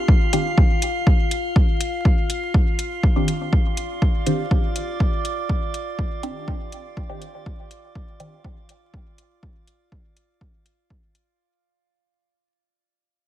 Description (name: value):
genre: dub techno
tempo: 122 BPM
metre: 4/4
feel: straight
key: unclear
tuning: A4 = 441 Hz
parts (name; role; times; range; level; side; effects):
- drifting glass-harmonics texture; texture; 0.0-11.4 s; F4 to F5; -28 LUFS; equal; chorus, built-in reverb, sidechain pumping
- electronic kick drum; drums; 0.1-11.0 s; none; -18 LUFS; equal; overdrive, small room ambience
- filtered dub chord stab; stabs; 0.3-8.3 s; Eb3 to G4; -27 LUFS; equal; phaser, sidechain pumping, dub echo
- electronic hi-hat; drums; 0.3-11.2 s; none; -30 LUFS; left 2 dB; overdrive, small room ambience
room: little or no reverb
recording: vinyl crackle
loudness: -19 LUFS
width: side -12 dB against mid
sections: 0.0-11.4 A section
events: fade-out 0.0-11.4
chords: none